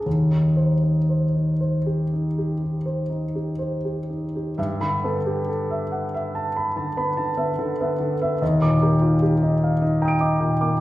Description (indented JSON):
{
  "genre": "classical, impressionist solo piano",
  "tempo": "38-51 BPM (dotted quarters)",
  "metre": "9/8",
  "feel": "rubato",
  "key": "unclear",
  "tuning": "A4 = 443 Hz",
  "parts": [
    { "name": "clear grand piano", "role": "solo", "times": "0.0-10.8 s", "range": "Eb2 to D7", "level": "-20 LUFS", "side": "equal", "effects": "none" }
  ],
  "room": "wet recital hall reverb, RT60 1.3 s",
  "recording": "heard from further back in the room",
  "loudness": "-20 LUFS",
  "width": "side -16 dB against mid",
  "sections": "0.0-4.6 A section; 4.6-10.8 B section",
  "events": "none",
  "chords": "0.1 Eb6; 4.6 G69; 8.4 Ebmaj7"
}